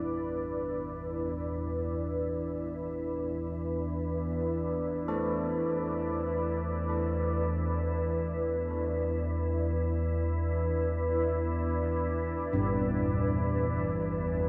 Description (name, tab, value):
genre	dark ambient drone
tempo	free time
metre	none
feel	none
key	E minor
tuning	A4 = 440 Hz
part	deep dark ambient pad	sustained chords	0.0-14.5 s	E4 to D5	-35 LUFS	equal	chorus, built-in reverb
part	old church bells	arpeggios	0.0-14.5 s	G2 to A4	-39 LUFS	equal	tape echo
part	organ-like drone	drone	0.0-14.5 s	E2 to E3	-35 LUFS	equal	ensemble chorus, built-in reverb
room	wet huge ambient reverb, RT60 8.3 s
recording	none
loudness	-31 LUFS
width	mono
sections	0.0-14.5 A section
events	fade-in on synth drone 0.0-14.5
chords	0.0 E5